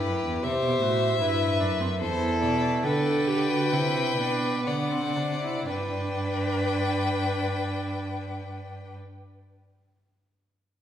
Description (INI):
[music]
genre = classical, baroque-style fugue for string quartet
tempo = 56-80 BPM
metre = 3/4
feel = straight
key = G major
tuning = A4 = 440 Hz
[part]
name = warm violin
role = melody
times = 0.0-8.9 s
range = B4 to G5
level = -30 LUFS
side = left 4 dB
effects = none
[part]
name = rich violin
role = second line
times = 0.0-8.9 s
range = G4 to D5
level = -30 LUFS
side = left 1 dB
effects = none
[part]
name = rich viola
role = accompaniment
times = 0.0-8.9 s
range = B3 to A4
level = -31 LUFS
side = right 1 dB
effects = none
[part]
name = rich cello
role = bass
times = 0.0-8.9 s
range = E2 to D3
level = -29 LUFS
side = right 2 dB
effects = none
[sound]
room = wet recital hall reverb, RT60 1.8 s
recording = heard from further back in the room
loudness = -24 LUFS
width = side -10 dB against mid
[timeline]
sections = 0.0-5.7 A section; 5.7-8.9 B section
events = slowing down 0.0-5.7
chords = 0.4 C; 2.0 Am/E; 2.8 G/D; 4.7 D7; 5.7 G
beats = | 0.44 1.21 2.01 | 2.84 3.73 4.66 | 5.69 6.75 7.82